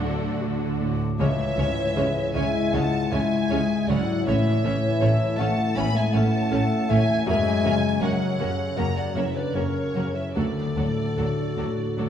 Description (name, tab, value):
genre	cinematic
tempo	79 BPM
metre	4/4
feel	uneven beats, rubato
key	C# phrygian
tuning	A4 = 441 Hz
part	rich symphonic violin section	melody	0.0-12.1 s	C#5 to B5	-32 LUFS	left 2 dB	none
part	mellow hollow silver concert flute	second line	0.0-12.1 s	A4 to G#5	-29 LUFS	equal	none
part	warm symphonic violin section	second line	0.0-12.1 s	C#4 to C#5	-35 LUFS	equal	none
part	rich symphonic viola section	accompaniment	0.0-12.1 s	C#3 to D4	-35 LUFS	right 2 dB	none
part	warm grand piano	accompaniment	0.0-12.1 s	C#2 to A#4	-28 LUFS	left 1 dB	none
part	mellow French horn section	sustained chords	0.0-12.1 s	C#3 to B3	-28 LUFS	left 2 dB	none
part	concert harp	arpeggios	0.0-12.1 s	F#2 to A#4	-31 LUFS	left 5 dB	none
part	rich symphonic cello section	bass	0.0-12.1 s	D2 to D3	-31 LUFS	right 3 dB	none
part	rich symphonic double bass section	bass	0.0-12.1 s	F#1 to D2	-31 LUFS	right 2 dB	none
part	mellow clarinet	second line	11.2-12.1 s	F#4	-34 LUFS	equal	none
room	wet scoring stage reverb, RT60 1.9 s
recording	small room ambience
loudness	-21 LUFS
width	side -9 dB against mid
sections	0.0-12.1 A section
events	none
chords	0.0 D; 1.2 C#m; 4.3 A; 7.3 F#; 10.4 D